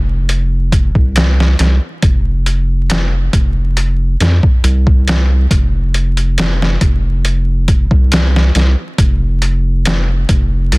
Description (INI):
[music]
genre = trip hop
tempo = 69 BPM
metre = 4/4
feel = straight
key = unclear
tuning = A4 = 442 Hz
[part]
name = round analog bass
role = bass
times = 0.0-10.8 s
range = F1 to F2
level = -13 LUFS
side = equal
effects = none
[part]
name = trip hop sampler-style drum kit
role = drums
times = 0.3-10.8 s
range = hi-hat, kick drum, snare drum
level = -14 LUFS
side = equal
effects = overdrive
[sound]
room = little or no reverb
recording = dense, heavily limited modern master, vinyl crackle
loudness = -11 LUFS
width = side -26 dB against mid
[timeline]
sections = 0.0-10.8 A section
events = none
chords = none